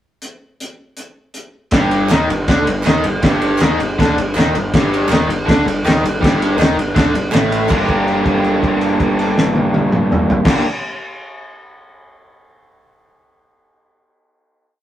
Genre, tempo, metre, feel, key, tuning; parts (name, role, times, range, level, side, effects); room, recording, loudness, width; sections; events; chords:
garage rock duo or trio; 161 BPM; 4/4; straight; G minor; A4 = 440 Hz
cloth-damped thuddy drum kit; drums; 0.2-10.5 s; crash cymbal, hi-hat, kick drum, ride cymbal, snare drum, toms; -16 LUFS; equal
raw garage guitar; riff; 1.7-10.6 s; G2 to G4; -16 LUFS; equal; overdrive
fuzz picked electric bass; bass; 1.7-10.6 s; G1 to Eb2; -24 LUFS; equal; overdrive
group handclap; percussion; 2.1-7.9 s; -28 LUFS; right 3 dB
light reverb; rough rehearsal-room recording; -13 LUFS; side -12 dB against mid
0.2-1.7 pickup bar; 1.7-7.7 riff; 7.7-10.7 final chord
held note 7.7-10.4
0.2 N.C.; 1.7 G5; 7.7 Gm